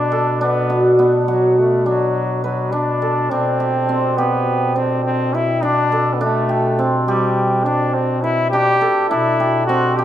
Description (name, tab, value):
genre	contemporary instrumental, chamber music in an uneven meter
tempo	103 BPM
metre	5/4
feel	straight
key	unclear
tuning	A4 = 440 Hz
part	brilliant trombone	melody	0.0-10.0 s	F#3 to G4	-19 LUFS	left 1 dB	none
part	cimbalom	arpeggios	0.0-10.0 s	B3 to B4	-18 LUFS	right 1 dB	none
part	dark bass clarinet	bass	0.0-10.0 s	B2	-22 LUFS	equal	none
room	moderate recital hall reverb, RT60 1.5 s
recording	minimal, uncompressed stereo recording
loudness	-15 LUFS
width	side -11 dB against mid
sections	0.0-10.0 A section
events	none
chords	0.0 Bm7; 3.3 Csus2/B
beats	| 0.41 0.98 1.56 2.15 2.73 | 3.31 3.89 4.47 5.05 5.63 | 6.21 6.79 7.37 7.95 8.53 | 9.11 9.69